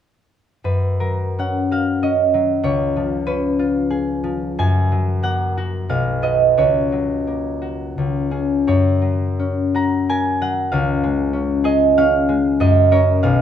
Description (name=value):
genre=classical, solo harp piece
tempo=79-96 BPM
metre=3/4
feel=rubato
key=F# major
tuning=A4 = 444 Hz
part: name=concert harp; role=solo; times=0.6-13.4 s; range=B1 to A#5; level=-16 LUFS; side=equal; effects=none
room=moderate stone room reverb, RT60 1.1 s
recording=none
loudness=-16 LUFS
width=side -9 dB against mid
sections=0.6-13.4 A section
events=none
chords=0.6 F#; 2.6 C#7; 4.6 F#; 5.9 B; 6.6 F#/C#; 8.0 C#5; 8.7 F#; 10.7 C#; 12.6 F#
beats=| 0.65 1.37 2.02 | 2.65 3.28 3.91 | 4.58 5.23 5.89 | 6.57 7.26 7.96 | 8.66 9.37 10.08 | 10.71 11.34 11.97 | 12.60 13.23